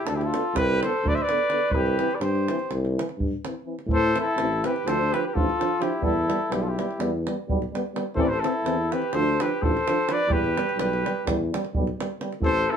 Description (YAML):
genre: balkan folk, Balkan brass band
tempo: 252 BPM (eighths)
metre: 9/8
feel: straight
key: unclear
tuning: A4 = 441 Hz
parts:
  - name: mellow trumpet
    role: melody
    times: 0.0-12.8 s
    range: G4 to E5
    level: -26 LUFS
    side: equal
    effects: none
  - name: warm flugelhorn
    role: second line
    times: 0.0-12.8 s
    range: D4 to C5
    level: -29 LUFS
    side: left 2 dB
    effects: none
  - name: warm tuba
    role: bass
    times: 0.1-12.7 s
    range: A1 to A2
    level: -28 LUFS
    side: left 1 dB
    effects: none
  - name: davul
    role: percussion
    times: 0.1-12.5 s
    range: none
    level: -30 LUFS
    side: right 2 dB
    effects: none
  - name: dark trombone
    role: accompaniment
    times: 0.3-12.8 s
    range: B3 to D4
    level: -33 LUFS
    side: left 4 dB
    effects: none
  - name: warm euphonium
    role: accompaniment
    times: 0.3-12.8 s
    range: D3 to G3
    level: -31 LUFS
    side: right 5 dB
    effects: none
room: wet studio ambience, RT60 0.5 s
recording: band playing live in one room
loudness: -22 LUFS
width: side -8 dB against mid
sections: 0.0-3.9 A section; 3.9-12.8 B section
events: none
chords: 0.0 Cmaj7sus2; 1.7 C; 3.9 Am; 4.8 Dm; 6.0 Em; 8.2 Am; 9.1 Dm; 10.3 Em